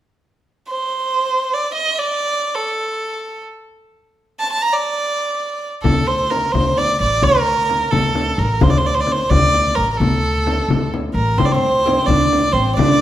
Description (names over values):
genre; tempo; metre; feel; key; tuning
Persian modal ensemble; 87 BPM (dotted quarters); 6/8; straight; D dastgah homayun; A4 = 440 Hz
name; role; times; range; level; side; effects
rich violin; melody; 0.7-13.0 s; A4 to Bb5; -17 LUFS; right 1 dB; none
upright bass; bass; 5.8-13.0 s; A1 to D2; -20 LUFS; equal; none
frame drum; percussion; 5.8-12.9 s; none; -20 LUFS; left 3 dB; none
oud; second line; 11.4-13.0 s; C4 to D4; -20 LUFS; right 3 dB; none
room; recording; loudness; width
wet recital hall reverb, RT60 1.3 s; recorded in a church or concert hall; -15 LUFS; side -12 dB against mid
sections
0.3-5.8 A section; 5.8-13.0 B section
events
none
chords
none